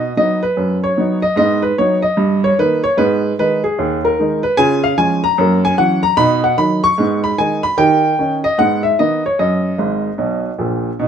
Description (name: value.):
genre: jazz, stride piano.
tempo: 150 BPM.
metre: 4/4.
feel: swing 64% on 8ths.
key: B major.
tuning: A4 = 440 Hz.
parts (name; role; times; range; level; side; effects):
warm upright piano; solo; 0.0-11.1 s; G#1 to C#6; -13 LUFS; equal; none.
room: moderate studio reverb, RT60 0.8 s.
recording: minimal, uncompressed stereo recording.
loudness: -13 LUFS.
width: side -8 dB against mid.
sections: 0.0-11.0 A section.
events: upright piano fill 9.8-11.0.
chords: 0.0 B; 1.4 G#m7; 2.2 D#/G; 3.0 G#m; 4.6 C#; 5.4 F#7; 6.2 B; 7.0 G#m; 7.8 D#7; 8.6 G#m; 9.4 D#madd11; 10.2 Bmaj7.